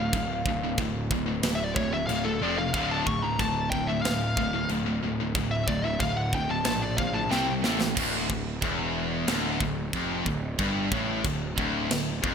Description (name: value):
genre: heavy metal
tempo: 92 BPM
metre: 4/4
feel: straight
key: D minor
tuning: A4 = 440 Hz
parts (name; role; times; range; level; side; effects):
- smooth overdriven lead guitar; melody; 0.0-7.5 s; A4 to C#6; -30 LUFS; left 2 dB; none
- high-gain distorted guitar; riff; 0.0-12.3 s; D2 to C4; -31 LUFS; left 10 dB; distortion
- high-gain distorted guitar; riff; 0.0-12.3 s; D2 to C4; -32 LUFS; right 11 dB; distortion
- fuzz picked electric bass; bass; 0.0-12.3 s; D1 to C2; -32 LUFS; right 1 dB; overdrive
- tight metal drum kit; drums; 0.1-12.3 s; china cymbal, crash cymbal, kick drum, snare drum; -31 LUFS; right 1 dB; gated reverb
room: moderate lush hall reverb, RT60 1.9 s, small room reverb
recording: bright 1980s-style digital production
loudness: -25 LUFS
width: side -7 dB against mid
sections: 0.0-8.0 A section; 8.0-12.3 B section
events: lead electric guitar solo 0.0-8.0; drum fill 7.3-8.0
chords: 0.0 Dm; 2.4 F5; 2.7 Dm; 7.3 C5; 7.6 A5; 8.0 Dm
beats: | 0.14 0.79 1.44 2.10 | 2.75 3.40 4.05 4.71 | 5.36 6.01 6.67 7.32 | 7.98 8.63 9.29 9.94 | 10.60 11.26 11.91